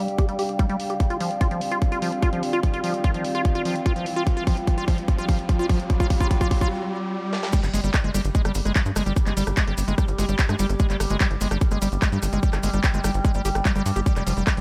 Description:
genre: psychedelic trance.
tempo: 147 BPM.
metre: 4/4.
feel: straight.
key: unclear.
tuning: A4 = 440 Hz.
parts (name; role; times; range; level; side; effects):
overtone-sweeping drone; sustained chords; 0.0-14.6 s; G3 to G4; -34 LUFS; equal; chorus, built-in reverb, sidechain pumping.
liquid acid bass; riff; 0.0-14.6 s; F3 to G4; -30 LUFS; equal; chorus, sidechain pumping, digital delay.
riser; sound effects; 0.5-7.5 s; none; -37 LUFS; equal; none.
warbly tape-like pad; texture; 0.0-6.7 s; C4 to F5; -33 LUFS; equal; chorus, built-in reverb, sidechain pumping.
techno drum kit; drums; 0.1-14.6 s; crash cymbal, handclaps, hi-hat, ride cymbal, rim click, snare drum; -33 LUFS; equal; high-pass filter on hats, high-pass filter on snare, high-pass filter on cymbals, high-pass filter on room.
electronic kick drum; drums; 0.2-14.6 s; none; -24 LUFS; equal; none.
maracas; percussion; 7.5-14.6 s; none; -40 LUFS; equal; none.
tight sequencer bass; bass; 7.6-14.6 s; F1 to G2; -27 LUFS; equal; none.
room: light reverb, digital ambience.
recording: none.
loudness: -23 LUFS.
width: mono.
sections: 0.0-7.5 A section; 7.5-14.6 B section.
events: build-up 0.0-7.5; filter sweep on acid bass 0.0-7.5; riser 0.5-7.5; drum fill 1.0-6.7, 7.3; break 6.7-7.5; drop 7.5-14.6.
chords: 0.0 G5; 1.0 F5; 7.5 N.C.; 14.1 Fsus2.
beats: 0.18 0.59 | 1.00 1.41 1.82 2.23 | 2.63 3.04 3.45 3.86 | 4.27 4.67 5.08 5.49 | 5.90 6.31 6.71 7.12 | 7.53 7.94 8.35 8.76 | 9.16 9.57 9.98 10.39 | 10.80 11.21 11.61 12.02 | 12.43 12.84 13.25 13.65 | 14.06 14.47.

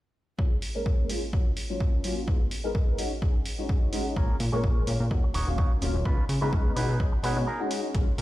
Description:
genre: filtered disco house.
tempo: 127 BPM.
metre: 4/4.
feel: swing 54% on 16ths.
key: unclear.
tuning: A4 = 440 Hz.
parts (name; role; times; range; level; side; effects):
dark concert grand piano; accompaniment; 0.4-8.1 s; Gb3 to Bb5; -32 LUFS; left 2 dB; phaser, sidechain pumping, low-pass filter.
electronic kick drum; drums; 0.4-8.0 s; none; -26 LUFS; equal; none.
tambourine; percussion; 0.4-8.2 s; none; barely audible; none; none.
electronic hi-hat; drums; 0.6-8.2 s; none; -39 LUFS; right 1 dB; sidechain pumping on hats.
electric guitar with an envelope filter; riff; 4.2-7.7 s; Db4 to Db5; -35 LUFS; right 2 dB; sidechain pumping, low-pass filter.
plucky analog bass; bass; 4.2-8.2 s; Eb1 to Db3; -28 LUFS; equal; sidechain pumping, low-pass filter.
room: little or no reverb.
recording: played on a big sound system in a bare room, stone room reverb.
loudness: -24 LUFS.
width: side -16 dB against mid.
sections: 0.4-7.9 A section.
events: filter sweep 0.4-7.9; break 7.5-7.9.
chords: 0.4 Bbm7; 1.3 Gbmaj7; 2.3 Abm69; 3.0 Ab7sus4; 4.2 Bbm7; 5.1 Ebm7; 6.1 Db7; 6.8 B6.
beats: | 0.39 0.86 1.33 1.80 | 2.28 2.75 3.22 3.69 | 4.17 4.64 5.11 5.58 | 6.06 6.53 7.00 7.47 | 7.95.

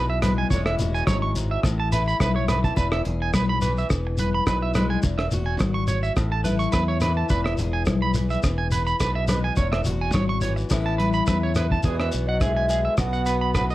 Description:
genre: highlife guitar band.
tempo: 106 BPM.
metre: 4/4.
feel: swing 54% on 16ths.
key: E major.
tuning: A4 = 440 Hz.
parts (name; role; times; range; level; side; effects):
picked steel-string acoustic guitar; accompaniment; 0.0-13.7 s; E2 to G#4; -31 LUFS; left 4 dB; none.
electric guitar at the edge of break-up; arpeggios; 0.0-13.7 s; G#4 to C#6; -27 LUFS; right 4 dB; slapback echo.
fingered electric bass; bass; 0.0-13.7 s; E1 to E2; -25 LUFS; equal; none.
cloth-damped thuddy drum kit; drums; 0.2-13.7 s; hi-hat, kick drum, rim click; -26 LUFS; equal; none.
congas; percussion; 0.2-11.6 s; none; -29 LUFS; left 3 dB; none.
shekere; percussion; 0.2-13.7 s; none; -31 LUFS; left 2 dB; none.
mellow hollow baroque flute; melody; 11.8-13.7 s; B4 to F#5; -26 LUFS; right 1 dB; none.
brilliant trombone; second line; 11.8-13.7 s; E3 to B3; -32 LUFS; left 2 dB; none.
room: little or no reverb.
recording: none.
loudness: -20 LUFS.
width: side -16 dB against mid.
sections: 0.0-11.8 A section; 11.8-13.7 B section.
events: none.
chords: 0.0 E; 0.5 C#m/E; 1.6 Asus2; 2.8 E; 5.0 C#m/E; 6.2 Aadd9; 7.3 E; 9.6 C#m/E; 10.7 Aadd9; 11.8 Eadd9; 13.0 B5.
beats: | 0.52 1.08 1.65 2.21 | 2.78 3.34 3.91 4.47 | 5.04 5.61 6.17 6.74 | 7.31 7.87 8.44 9.01 | 9.57 10.14 10.71 11.28 | 11.85 12.41 12.98 13.55.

